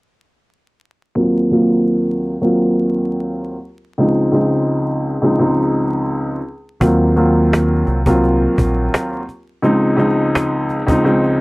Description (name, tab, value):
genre	hip hop, boom-bap hip-hop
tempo	85 BPM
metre	4/4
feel	swing 54% on 16ths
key	Eb dorian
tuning	A4 = 440 Hz
part	dark concert grand piano	accompaniment	1.2-11.4 s	Db2 to F4	-14 LUFS	equal	cassette tape, high-pass filter, low-pass filter
part	deep dub fingered electric bass	bass	6.8-8.9 s	Bb1 to Eb2	-17 LUFS	equal	tube saturation
part	cajon	drums	6.8-11.3 s	none	-19 LUFS	equal	none
room	little or no reverb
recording	dry, gritty hardware recording, vinyl crackle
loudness	-14 LUFS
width	side -23 dB against mid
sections	1.2-11.4 A section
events	filter sweep on grand piano 1.2-11.4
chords	1.2 Ebm69; 4.0 Dbmaj7; 6.8 Ebm69; 9.6 Dbmaj7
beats	| 1.16 1.87 2.58 3.28 | 3.99 4.69 5.40 6.10 | 6.81 7.52 8.22 8.93 | 9.63 10.34 11.04